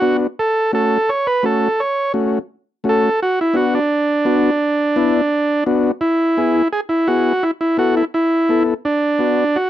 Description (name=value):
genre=latin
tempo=170 BPM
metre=4/4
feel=straight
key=unclear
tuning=A4 = 440 Hz
part: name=combo organ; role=melody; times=0.0-9.7 s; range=D4 to C#5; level=-16 LUFS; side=right 2 dB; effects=none
part: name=combo organ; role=accompaniment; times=0.0-9.4 s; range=A3 to A4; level=-17 LUFS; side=left 3 dB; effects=none
room=light reverb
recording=dry, close 1970s-style studio recording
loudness=-15 LUFS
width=side -12 dB against mid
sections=0.0-6.0 A section; 6.0-9.7 B section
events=none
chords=0.4 F#m; 3.2 Bm; 6.0 E; 7.4 Asus2; 8.8 Bm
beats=0.03 | 0.38 0.73 1.08 1.44 | 1.79 2.14 2.50 2.85 | 3.20 3.55 3.91 4.26 | 4.61 4.96 5.32 5.67 | 6.02 6.38 6.73 7.08 | 7.43 7.79 8.14 8.49 | 8.84 9.20 9.55